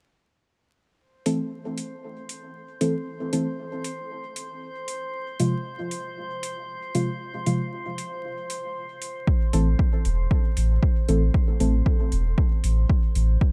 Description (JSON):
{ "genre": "dub techno", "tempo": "116 BPM", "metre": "4/4", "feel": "straight", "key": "A harmonic minor", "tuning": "A4 = 441 Hz", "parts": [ { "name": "drifting glass-harmonics texture", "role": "texture", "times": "1.5-13.5 s", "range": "C5", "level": "-39 LUFS", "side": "equal", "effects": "chorus, built-in reverb, sidechain pumping" }, { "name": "deep mellow chord stab", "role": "stabs", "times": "1.3-11.7 s", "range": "C3 to A4", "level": "-30 LUFS", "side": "equal", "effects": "chorus, phaser, sidechain pumping, dub echo" }, { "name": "electronic hi-hat", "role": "drums", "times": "1.3-13.3 s", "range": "none", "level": "-38 LUFS", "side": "equal", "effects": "overdrive" }, { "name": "electronic kick drum", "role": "drums", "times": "9.3-13.5 s", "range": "none", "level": "-24 LUFS", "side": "equal", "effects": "overdrive" }, { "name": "soft dub sub bass", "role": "bass", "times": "9.5-13.4 s", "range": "E1 to A1", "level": "-23 LUFS", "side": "equal", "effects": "sidechain pumping" } ], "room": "digital ambience", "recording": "dark, warm production, vinyl crackle", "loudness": "-25 LUFS", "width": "mono", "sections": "1.0-13.5 A section", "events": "none", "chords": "1.0 Am; 5.1 Fm; 9.3 Am" }